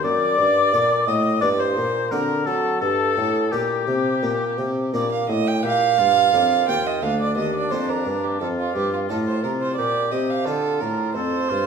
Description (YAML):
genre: classical, baroque-style sonata movement with continuo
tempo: 87 BPM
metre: 4/4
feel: straight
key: G minor, Bb major from 5.6 s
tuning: A4 = 440 Hz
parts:
  - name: warm oboe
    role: melody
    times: 0.0-11.7 s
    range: D4 to Eb5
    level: -24 LUFS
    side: left 6 dB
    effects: none
  - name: warm violin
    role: second line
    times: 0.0-11.7 s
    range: F4 to G5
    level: -23 LUFS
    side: right 7 dB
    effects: none
  - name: harpsichord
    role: accompaniment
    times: 0.0-11.7 s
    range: D2 to A4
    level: -27 LUFS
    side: left 2 dB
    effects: none
  - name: dark bassoon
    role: bass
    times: 0.0-11.7 s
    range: D2 to F#3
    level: -25 LUFS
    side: equal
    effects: none
room: wet recital hall reverb, RT60 1.4 s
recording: minimal, uncompressed stereo recording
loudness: -18 LUFS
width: side -6 dB against mid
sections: 0.0-5.6 A section; 5.6-11.7 A section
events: none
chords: 0.0 D/F#; 1.4 Gm; 2.1 D7; 2.8 Gm; 5.6 Bb; 8.4 F7; 9.8 Bb; 11.2 F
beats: | 0.05 0.73 1.43 2.12 | 2.82 3.52 4.23 4.94 | 5.63 6.33 7.02 7.71 | 8.40 9.09 9.78 10.47 | 11.16